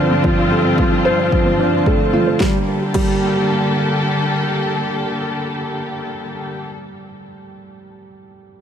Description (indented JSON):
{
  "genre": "piano and strings electronica",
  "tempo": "111 BPM",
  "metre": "4/4",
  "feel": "straight",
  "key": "G minor",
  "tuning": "A4 = 435 Hz",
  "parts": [
    { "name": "rich studio string section", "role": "sustained chords", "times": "0.0-6.7 s", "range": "G2 to A5", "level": "-20 LUFS", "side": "left 2 dB", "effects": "none" },
    { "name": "felt-muted upright piano", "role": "riff", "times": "0.0-8.6 s", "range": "F3 to C5", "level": "-20 LUFS", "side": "right 2 dB", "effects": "digital delay" },
    { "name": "deep house drum kit", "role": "drums", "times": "0.1-3.1 s", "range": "crash cymbal, snare drum, toms", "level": "-26 LUFS", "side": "right 1 dB", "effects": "overdrive, low-pass filter on toms, low-pass filter on snare, low-pass filter on cymbals" },
    { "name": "soft round pluck", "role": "arpeggios", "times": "0.2-3.1 s", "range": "F4 to F5", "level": "-28 LUFS", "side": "right 1 dB", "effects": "none" },
    { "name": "electronic kick drum", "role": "drums", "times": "0.2-3.1 s", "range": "none", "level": "-20 LUFS", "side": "left 1 dB", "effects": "overdrive" }
  ],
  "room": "light reverb",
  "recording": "none",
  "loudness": "-15 LUFS",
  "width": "side -8 dB against mid",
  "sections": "0.0-2.4 A section; 2.4-6.7 B section",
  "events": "filter sweep on drum 0.0-2.4",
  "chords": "0.0 Dm7/G; 2.4 Gmadd9"
}